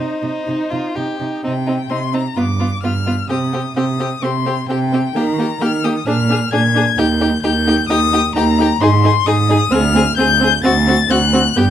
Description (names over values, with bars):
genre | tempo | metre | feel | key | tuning
quick classical-period movement for string quartet | 130 BPM | 4/4 | rubato | C minor | A4 = 440 Hz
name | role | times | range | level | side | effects
rich violin | melody | 0.0-11.7 s | C5 to A6 | -19 LUFS | left 8 dB | none
rich violin | second line | 0.0-11.6 s | Eb4 to Ab4 | -23 LUFS | left 3 dB | none
warm viola | accompaniment | 0.0-11.6 s | Bb3 to Eb4 | -20 LUFS | right 2 dB | none
rich cello | bass | 0.0-11.7 s | D2 to Eb3 | -18 LUFS | right 3 dB | none
room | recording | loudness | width
light reverb | lossy compression artefacts | -14 LUFS | side -10 dB against mid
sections
0.0-1.4 A section; 1.4-11.7 B section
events
none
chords
0.0 Cm; 2.4 G7; 3.3 Cm; 5.2 Eb; 6.1 Bb7; 7.0 Eb; 8.8 Ab; 9.7 Dm7b5